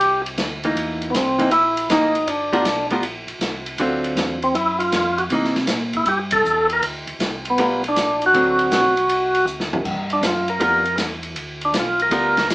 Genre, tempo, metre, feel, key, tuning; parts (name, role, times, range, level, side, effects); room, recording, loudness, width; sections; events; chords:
soul jazz organ trio; 158 BPM; 4/4; swing 66% on 8ths; A4 = 441 Hz
percussive tonewheel organ; melody; 0.0-12.5 s; B3 to Bb4; -17 LUFS; equal; slow rotary speaker
mellow tonewheel organ; bass; 0.0-12.5 s; G1 to C3; -31 LUFS; equal; overdrive, chorus vibrato, slow rotary speaker
open jazz drum kit; drums; 0.0-12.5 s; crash cymbal, hi-hat, kick drum, ride cymbal, snare drum, toms; -25 LUFS; equal
archtop guitar, miked and amplified; accompaniment; 0.6-12.4 s; D3 to A#4; -21 LUFS; equal
wet studio reverb, RT60 0.5 s; band playing live in one room, small speaker sound; -17 LUFS; side -20 dB against mid
0.0-9.9 A section; 9.9-12.5 B section
band accent 6.3; drum fill 9.5-9.9; tonewheel organ solo 9.9-12.5
0.0 C7#9; 2.3 G7#9; 3.8 D7#9; 5.3 C7#9; 6.8 G7#9; 8.3 D7; 9.9 G7#9